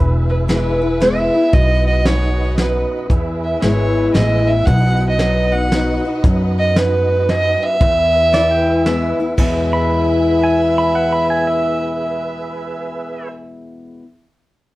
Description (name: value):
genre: honky-tonk and classic country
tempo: 115 BPM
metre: 3/4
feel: swing 64% on 8ths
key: E major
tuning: A4 = 440 Hz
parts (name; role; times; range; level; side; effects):
- pedal steel guitar; second line; 0.0-0.1, 8.3-13.3 s; B4 to B5; -22 LUFS; right 2 dB; none
- picked steel-string acoustic guitar; accompaniment; 0.0-14.0 s; E2 to F#4; -21 LUFS; left 2 dB; none
- tonewheel organ; accompaniment; 0.0-13.3 s; D#4 to E5; -26 LUFS; right 3 dB; slow rotary speaker, overdrive, chorus vibrato
- warm studio violin section; sustained chords; 0.0-13.3 s; B3 to B5; -32 LUFS; left 1 dB; none
- upright bass; bass; 0.0-14.0 s; E1 to F#2; -19 LUFS; equal; none
- dark fiddle; melody; 0.3-13.3 s; B4 to F#5; -18 LUFS; right 1 dB; none
- soft brush drum kit; drums; 0.5-9.5 s; crash cymbal, hi-hat, kick drum, snare drum; -17 LUFS; equal; none
room: moderate studio reverb, RT60 0.7 s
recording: worn, warbling old tape, cassette tape, warbly pitch drift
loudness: -13 LUFS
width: side -18 dB against mid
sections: 0.0-9.4 A section; 9.4-12.5 B section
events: none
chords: 0.0 E; 1.5 B; 3.1 E; 4.7 B; 7.8 E